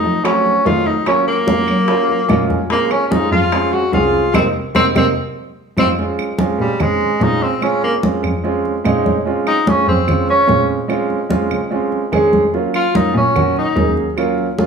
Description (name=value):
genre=Afro-Cuban jazz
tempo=146 BPM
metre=4/4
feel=straight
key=Bb minor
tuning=A4 = 441 Hz
part: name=clear tenor saxophone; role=melody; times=0.0-14.0 s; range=G3 to Gb4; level=-16 LUFS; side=left 1 dB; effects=none
part: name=warm concert grand piano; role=accompaniment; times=0.0-14.7 s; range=Gb3 to Ab5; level=-18 LUFS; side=right 3 dB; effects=none
part: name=warm cello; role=bass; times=0.0-14.7 s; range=C2 to Gb3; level=-22 LUFS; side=equal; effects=none
part: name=congas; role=percussion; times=0.0-14.7 s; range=none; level=-21 LUFS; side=left 1 dB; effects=none
part: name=claves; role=percussion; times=0.2-14.4 s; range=none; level=-29 LUFS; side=right 5 dB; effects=none
part: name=bongos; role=percussion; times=0.3-5.9 s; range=none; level=-25 LUFS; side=left 4 dB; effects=none
room=wet large studio reverb, RT60 1.1 s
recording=band playing live in one room, small room ambience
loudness=-13 LUFS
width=side -6 dB against mid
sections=0.0-6.0 A section; 6.0-14.7 B section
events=grand piano fill 2.1-2.7, 8.6-9.3; band accent 4.3-6.0; drum fill 5.8; tenor saxophone solo 6.0-14.7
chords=0.0 F7b9; 1.1 Ebm7; 2.7 Bbm7; 4.3 Cm7; 5.2 F5; 6.0 Bbm7; 12.5 Ebm7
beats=0.25 0.66 | 1.07 1.48 1.89 2.30 | 2.71 3.12 3.53 3.94 | 4.35 4.75 5.17 5.57 | 5.98 6.39 6.80 7.21 | 7.62 8.03 8.44 8.85 | 9.26 9.67 10.08 10.49 | 10.90 11.31 11.72 12.13 | 12.54 12.95 13.36 13.77 | 14.18 14.59